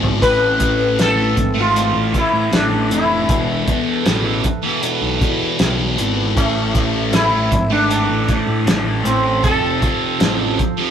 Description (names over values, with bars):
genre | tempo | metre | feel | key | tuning
psychedelic rock | 78 BPM | 4/4 | straight | unclear | A4 = 440 Hz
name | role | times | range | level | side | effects
thick fuzz guitar | riff | 0.0-10.9 s | E2 to A3 | -20 LUFS | equal | distortion, phaser
fuzz fingered electric bass | bass | 0.0-10.6 s | E1 to A2 | -22 LUFS | equal | overdrive
cloth-damped thuddy drum kit | drums | 0.0-10.8 s | hi-hat, kick drum, snare drum, splash cymbal, toms | -20 LUFS | equal | none
sitar | melody | 0.2-10.9 s | A3 to B4 | -19 LUFS | equal | none
hand-pumped harmonium | sustained chords | 0.2-10.9 s | C4 to F5 | -30 LUFS | right 5 dB | none
room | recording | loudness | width
moderate small room reverb, RT60 0.5 s | rough rehearsal-room recording | -14 LUFS | side -8 dB against mid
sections
0.0-10.9 A section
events
drum fill 0.0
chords
0.2 Am; 3.3 Esus4; 6.4 Am; 9.4 F